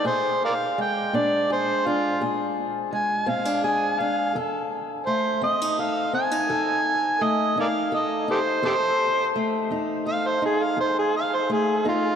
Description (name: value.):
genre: acoustic country blues, solo or duo.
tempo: 56 BPM (dotted quarters).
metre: 12/8.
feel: straight.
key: F mixolydian.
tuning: A4 = 440 Hz.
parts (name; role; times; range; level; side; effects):
overdriven harmonica; melody; 0.0-12.2 s; F4 to Ab5; -23 LUFS; right 1 dB; none.
fingerpicked acoustic archtop guitar; accompaniment; 0.0-12.2 s; F2 to A4; -26 LUFS; left 2 dB; none.
room: wet cathedral reverb, RT60 5.2 s.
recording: in a vast, echoing space.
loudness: -21 LUFS.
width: side -8 dB against mid.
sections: 0.0-12.2 A section.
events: harmonica solo 0.0-12.2.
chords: 0.1 Bb7; 4.4 F7.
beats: | 0.06 1.14 2.21 3.28 | 4.35 5.43 6.50 7.57 | 8.64 9.71 10.78 11.85.